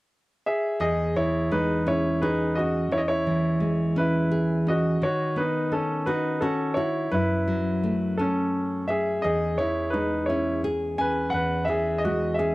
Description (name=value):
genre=folk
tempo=57 BPM (dotted quarters)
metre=6/8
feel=straight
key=E major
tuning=A4 = 439 Hz
part: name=bright concert grand piano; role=melody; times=0.5-12.5 s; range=C#4 to G#5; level=-25 LUFS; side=equal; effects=none
part: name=nylon-string guitar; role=accompaniment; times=0.8-12.5 s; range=E2 to G#4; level=-26 LUFS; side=equal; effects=none
room=small room ambience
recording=dry, close 1970s-style studio recording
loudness=-22 LUFS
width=side -19 dB against mid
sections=0.8-12.5 A section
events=none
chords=0.0 N.C.; 0.8 E6; 5.0 Badd9/D#; 7.1 F#m7; 9.2 E6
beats=| 0.81 1.86 | 2.91 3.96 | 5.02 6.07 | 7.12 8.17 | 9.22 10.27 | 11.32 12.37